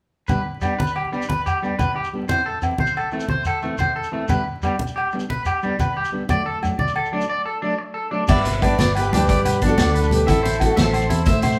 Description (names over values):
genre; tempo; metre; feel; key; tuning
highlife guitar band; 120 BPM (dotted quarters); 12/8; straight; G major; A4 = 440 Hz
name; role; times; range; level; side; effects
electric guitar at the edge of break-up; accompaniment; 0.3-11.2 s; E3 to E4; -32 LUFS; equal; none
electric guitar at the edge of break-up; arpeggios; 0.3-11.6 s; G3 to E5; -27 LUFS; equal; none
agogo bells; percussion; 0.3-11.6 s; none; -30 LUFS; equal; none
congas; percussion; 0.3-11.5 s; none; -29 LUFS; equal; none
shekere; percussion; 0.3-11.6 s; none; -31 LUFS; equal; none
picked steel-string acoustic guitar; melody; 8.3-11.6 s; E4 to E5; -25 LUFS; equal; none
dark trumpet; second line; 8.3-11.6 s; D4 to C5; -32 LUFS; equal; none
fingered electric bass; bass; 8.3-11.6 s; G1 to A2; -24 LUFS; equal; none
vintage drum kit; drums; 8.3-11.5 s; crash cymbal, hi-hat, kick drum, snare drum; -25 LUFS; equal; none
room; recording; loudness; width
moderate large studio reverb, RT60 1.1 s; band playing live in one room; -21 LUFS; mono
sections
0.3-8.3 A section; 8.3-11.6 B section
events
none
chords
0.3 G; 2.3 Am; 4.3 G; 6.3 D; 8.3 G; 10.3 Am